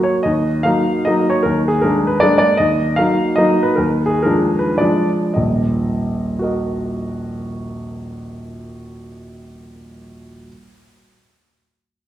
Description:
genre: classical, romantic triple-time dance for piano with dotted rhythms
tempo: 98-167 BPM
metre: 3/4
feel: rubato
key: Eb minor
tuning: A4 = 438 Hz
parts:
  - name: clear baby grand piano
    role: solo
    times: 0.0-10.5 s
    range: Eb1 to F5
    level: -16 LUFS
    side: equal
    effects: none
room: wet recital hall reverb, RT60 1.6 s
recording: heard from further back in the room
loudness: -14 LUFS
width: side -12 dB against mid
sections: 0.3-5.4 A section; 5.4-8.4 B section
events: slowing down 2.0-5.4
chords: 0.3 Ebm; 1.4 Bb7/Eb; 2.6 Ebm; 3.8 Bb7b9; 5.4 Ebm

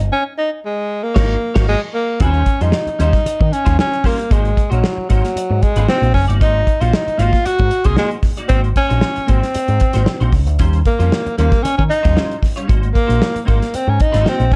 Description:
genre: funk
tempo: 114 BPM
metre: 4/4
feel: straight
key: unclear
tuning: A4 = 440 Hz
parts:
  - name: clean electric guitar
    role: accompaniment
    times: 0.0-14.5 s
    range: G3 to D5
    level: -28 LUFS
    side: equal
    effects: ensemble chorus
  - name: picked electric bass with an envelope filter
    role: bass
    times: 0.0-14.6 s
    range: Gb1 to Eb3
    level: -18 LUFS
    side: equal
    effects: none
  - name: breathy tenor saxophone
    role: melody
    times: 0.1-14.6 s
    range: Gb3 to Ab4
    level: -21 LUFS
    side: equal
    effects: slapback echo
  - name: warm soul drum kit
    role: drums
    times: 1.2-14.6 s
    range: crash cymbal, hi-hat, kick drum, snare drum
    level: -20 LUFS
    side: equal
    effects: none
room: small room ambience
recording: dark, warm production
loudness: -16 LUFS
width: mono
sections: 0.0-2.2 A section; 2.2-14.6 B section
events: silent gap 0.1-2.2; band accent 1.2-2.2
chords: 0.0 Ab9sus4; 2.2 Eb13; 4.3 Ab9; 10.6 Eb13; 12.7 Ab9

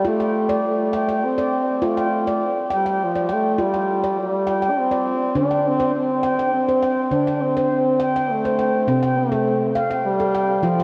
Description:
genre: world meditative, meditative tuned percussion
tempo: 102 BPM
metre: 3/4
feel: straight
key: F major pentatonic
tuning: A4 = 435 Hz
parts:
  - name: warm French horn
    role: melody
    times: 0.0-10.8 s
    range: F3 to D4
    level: -24 LUFS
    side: equal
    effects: delay
  - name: handpan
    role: arpeggios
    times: 0.0-10.8 s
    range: C3 to G5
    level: -23 LUFS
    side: equal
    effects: delay
room: wet huge ambient reverb, RT60 7.9 s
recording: dreamy mix soaked in reverb, cassette tape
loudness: -20 LUFS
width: mono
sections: 0.0-10.8 A section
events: none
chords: 0.0 F; 5.4 D5; 8.9 C5

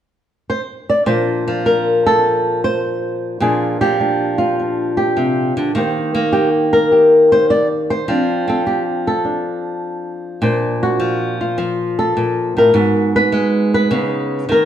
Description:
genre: solo jazz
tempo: 103 BPM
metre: 4/4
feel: swing 69% on 8ths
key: Bb major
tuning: A4 = 440 Hz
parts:
  - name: flamenco guitar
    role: solo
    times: 0.5-14.7 s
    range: Ab2 to D5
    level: -14 LUFS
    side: equal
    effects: none
room: wet stone room reverb, RT60 1.3 s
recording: band playing live in one room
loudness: -14 LUFS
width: side -10 dB against mid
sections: 0.0-1.1 A section; 1.1-10.4 B section; 10.4-14.7 C section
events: none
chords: 0.0 N.C.; 1.1 Bbmaj9; 3.4 Bb69; 5.7 Eb6; 8.1 F6; 10.4 Bbadd9; 12.7 Abm7; 13.9 Db7sus2

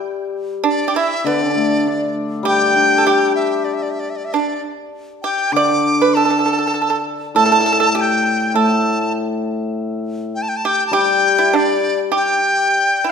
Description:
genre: chinese traditional, Chinese chamber ensemble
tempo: 99 BPM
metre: 4/4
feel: rubato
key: unclear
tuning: A4 = 441 Hz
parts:
  - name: hammered dulcimer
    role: accompaniment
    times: 0.0-12.7 s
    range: A2 to G4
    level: -20 LUFS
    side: left 3 dB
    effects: none
  - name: pipa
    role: second line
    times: 0.6-13.1 s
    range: D4 to D5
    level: -19 LUFS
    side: right 6 dB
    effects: none
  - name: bright dizi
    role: melody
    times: 0.7-13.1 s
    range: D5 to D6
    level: -18 LUFS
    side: left 2 dB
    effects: none
room: wet recital hall reverb, RT60 1.7 s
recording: none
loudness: -14 LUFS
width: side -6 dB against mid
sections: 0.0-13.1 A section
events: none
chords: none

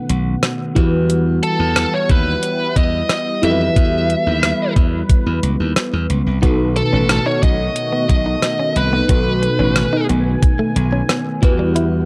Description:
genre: 1980s-style pop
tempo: 90 BPM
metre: 4/4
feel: straight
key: B mixolydian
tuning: A4 = 440 Hz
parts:
  - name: glassy digital keys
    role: accompaniment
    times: 0.0-12.1 s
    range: B2 to B4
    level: -24 LUFS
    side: equal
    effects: chorus
  - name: sweeping resonant pad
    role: sustained chords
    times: 0.0-12.1 s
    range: D#3 to G#5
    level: -27 LUFS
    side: equal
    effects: chorus
  - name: glassy slap bass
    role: bass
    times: 0.1-12.1 s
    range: A1 to E#2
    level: -21 LUFS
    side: equal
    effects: none
  - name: clean 12-bit digital drum machine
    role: drums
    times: 0.1-11.9 s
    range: hi-hat, kick drum, rim click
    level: -18 LUFS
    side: equal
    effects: none
  - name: bluesy overdriven lead guitar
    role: melody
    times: 1.4-10.1 s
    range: A4 to E5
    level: -23 LUFS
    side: equal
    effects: distortion
  - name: direct-recorded clean electric guitar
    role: riff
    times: 6.4-11.9 s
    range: G3 to E4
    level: -27 LUFS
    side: equal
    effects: subtle chorus, tape echo
room: moderate plate reverb, RT60 2.2 s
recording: dark, warm production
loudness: -17 LUFS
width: mono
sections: 0.0-12.1 A section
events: none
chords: 0.0 B7; 0.8 Emadd9; 6.4 B7; 11.4 Emadd9

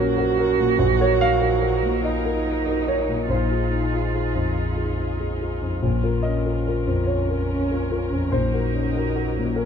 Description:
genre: neoclassical piano and strings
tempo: 48 BPM (dotted quarters)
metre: 6/8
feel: rubato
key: Bb minor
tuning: A4 = 443 Hz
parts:
  - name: muted cello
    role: second line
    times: 0.0-9.7 s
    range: Db4 to Gb4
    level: -25 LUFS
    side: right 12 dB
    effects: none
  - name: dark concert grand piano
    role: accompaniment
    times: 0.0-9.7 s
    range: Bb1 to F5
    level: -21 LUFS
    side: left 1 dB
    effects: none
  - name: muted chamber string section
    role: sustained chords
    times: 0.0-9.7 s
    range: Gb3 to Bb4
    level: -31 LUFS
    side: left 2 dB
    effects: none
room: light reverb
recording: dark, warm production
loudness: -20 LUFS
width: side -7 dB against mid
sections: 0.0-9.7 A section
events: none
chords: 0.0 Gb/Bb; 0.8 Ebm/Bb; 3.3 Fm7/Bb; 5.8 Bbm; 8.3 Gb/Bb

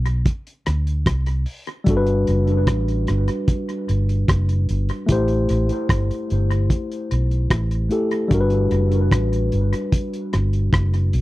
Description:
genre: lovers rock reggae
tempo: 74 BPM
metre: 4/4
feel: straight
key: G major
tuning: A4 = 440 Hz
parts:
  - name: vintage muted fingered electric bass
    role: bass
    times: 0.0-11.2 s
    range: F#1 to D2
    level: -19 LUFS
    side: equal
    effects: none
  - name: cloth-damped thuddy drum kit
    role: drums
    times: 0.1-11.2 s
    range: hi-hat, kick drum, rim click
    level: -21 LUFS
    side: equal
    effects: tape echo
  - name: tine electric piano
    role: accompaniment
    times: 1.8-11.2 s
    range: G3 to C5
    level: -23 LUFS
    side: left 1 dB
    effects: tape echo
room: little or no reverb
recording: dry, close 1970s-style studio recording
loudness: -18 LUFS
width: side -17 dB against mid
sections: 0.0-11.2 A section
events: none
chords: 0.0 Bm; 1.9 Gmaj7; 5.1 Am7; 8.3 Gmaj7

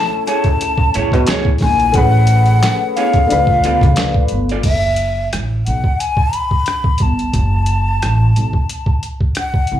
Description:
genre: R&B, neo-soul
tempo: 89 BPM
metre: 4/4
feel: swing 57% on 16ths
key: F# minor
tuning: A4 = 443 Hz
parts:
  - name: breathy hollow jazz flute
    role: melody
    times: 0.0-9.8 s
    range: E5 to B5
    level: -18 LUFS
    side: left 2 dB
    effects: slapback echo, plate reverb
  - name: warm upright piano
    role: accompaniment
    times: 0.0-4.7 s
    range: A3 to B4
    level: -21 LUFS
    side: left 4 dB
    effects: plate reverb, slapback echo
  - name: electric guitar through a small old amp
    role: second line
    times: 0.3-4.6 s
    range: A3 to D5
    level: -22 LUFS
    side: right 6 dB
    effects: plate reverb, slapback echo
  - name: boom bap sampler-style drum kit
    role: drums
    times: 0.3-9.8 s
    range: crash cymbal, finger snaps, hi-hat, kick drum, rim click, snare drum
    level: -17 LUFS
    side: equal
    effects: none
  - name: upright bass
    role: bass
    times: 1.0-9.8 s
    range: F#1 to C#3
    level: -16 LUFS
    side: right 1 dB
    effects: none
room: light reverb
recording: live gig heard through the venue's PA, club reverb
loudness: -12 LUFS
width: side -11 dB against mid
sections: 0.0-4.6 A section; 4.6-9.8 B section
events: none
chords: 0.0 B9sus4 (rootless); 1.9 Amaj9; 3.3 C#7b9b13; 4.6 F#m

